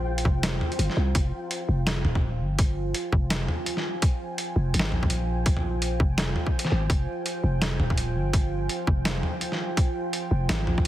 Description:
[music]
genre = half-time drum and bass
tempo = 167 BPM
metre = 4/4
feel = swing 60% on 16ths, half-time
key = F minor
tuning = A4 = 440 Hz
[part]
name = deep dark ambient pad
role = sustained chords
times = 0.0-10.9 s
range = F4 to Bb5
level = -32 LUFS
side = right 2 dB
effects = chorus, built-in reverb, sidechain pumping
[part]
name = growling 808-style bass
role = bass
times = 0.0-10.9 s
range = Eb1 to C2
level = -26 LUFS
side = equal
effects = none
[part]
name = flickering grainy texture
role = texture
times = 0.0-1.2 s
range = F4 to G5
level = -40 LUFS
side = equal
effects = built-in reverb
[part]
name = boom bap sampler-style drum kit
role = drums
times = 0.2-10.9 s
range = hi-hat, snare drum, toms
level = -28 LUFS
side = equal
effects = none
[part]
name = electronic kick drum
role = drums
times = 0.3-10.8 s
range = none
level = -23 LUFS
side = equal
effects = none
[sound]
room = little or no reverb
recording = heavily compressed radio sound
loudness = -23 LUFS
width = side -13 dB against mid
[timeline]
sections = 0.0-1.1 A section; 1.1-10.9 A section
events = drop 0.0-1.1, 1.1-10.9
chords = 0.0 F5; 1.1 Fm

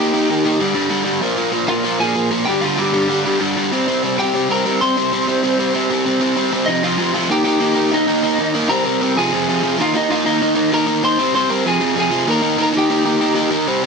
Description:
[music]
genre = punk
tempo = 193 BPM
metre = 4/4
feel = straight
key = C minor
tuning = A4 = 438 Hz
[part]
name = lightly driven lead guitar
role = melody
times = 0.0-13.5 s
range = Eb4 to C6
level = -19 LUFS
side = left 1 dB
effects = none
[part]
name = biting overdriven guitar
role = riff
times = 0.0-13.8 s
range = F2 to Eb4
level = -16 LUFS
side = right 1 dB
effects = none
[sound]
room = moderate studio reverb, RT60 0.6 s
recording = nothing above 10.8 kHz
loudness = -15 LUFS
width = side -4 dB against mid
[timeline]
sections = 0.0-1.2 A section; 1.2-6.2 B section; 6.2-13.9 A section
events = none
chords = 0.0 Eb; 0.6 G5; 1.2 Bb5; 2.5 G5; 3.7 C5; 6.7 F5; 7.3 Eb; 8.7 C5; 9.2 Fm; 9.8 Eb5; 11.2 C5; 11.7 Fm; 12.3 Eb

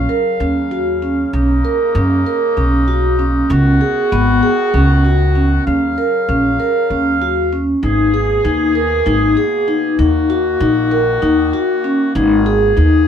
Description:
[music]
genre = contemporary instrumental, chamber music in an uneven meter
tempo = 194 BPM (eighths)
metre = 7/8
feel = straight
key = Eb minor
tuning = A4 = 440 Hz
[part]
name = warm woodwind section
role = sustained chords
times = 0.0-13.1 s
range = Cb3 to F5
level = -20 LUFS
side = left 1 dB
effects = none
[part]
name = vibraphone with soft mallets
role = arpeggios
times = 0.0-13.0 s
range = Cb4 to Bb4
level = -15 LUFS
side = equal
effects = none
[part]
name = upright bass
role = bass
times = 0.0-13.1 s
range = Ab1 to F#2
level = -16 LUFS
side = equal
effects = none
[sound]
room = light reverb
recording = dark, warm production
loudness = -12 LUFS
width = side -8 dB against mid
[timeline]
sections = 0.0-7.8 A section; 7.8-13.1 B section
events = none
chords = 0.0 Ebm9; 1.3 Bmaj9; 3.5 Db9sus4; 5.7 Ebm9; 7.8 Abmadd9; 10.0 Ebm; 12.2 Abmadd9

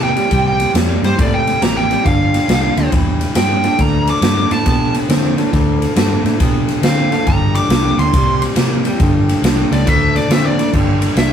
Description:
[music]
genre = electric blues shuffle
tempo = 138 BPM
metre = 4/4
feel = swing 65% on 8ths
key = G mixolydian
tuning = A4 = 440 Hz
[part]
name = smooth overdriven lead guitar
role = melody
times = 0.0-11.3 s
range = C5 to D6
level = -18 LUFS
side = equal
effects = none
[part]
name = electric guitar through a small old amp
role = riff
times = 0.0-11.3 s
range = G2 to C4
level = -19 LUFS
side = left 1 dB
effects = none
[part]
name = vintage muted fingered electric bass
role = bass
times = 0.0-11.3 s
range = G1 to D3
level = -18 LUFS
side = equal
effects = none
[part]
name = swinging big-band drum kit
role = drums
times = 0.2-11.3 s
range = crash cymbal, kick drum, ride cymbal, snare drum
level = -16 LUFS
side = right 1 dB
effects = none
[sound]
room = light reverb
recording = rough rehearsal-room recording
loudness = -12 LUFS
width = side -8 dB against mid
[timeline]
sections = 0.0-10.7 A section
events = lead electric guitar solo 0.0-10.7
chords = 0.0 C5; 2.1 G5; 3.8 D5; 7.3 G5; 8.1 C5; 9.0 G5; 9.9 D5; 10.7 G5

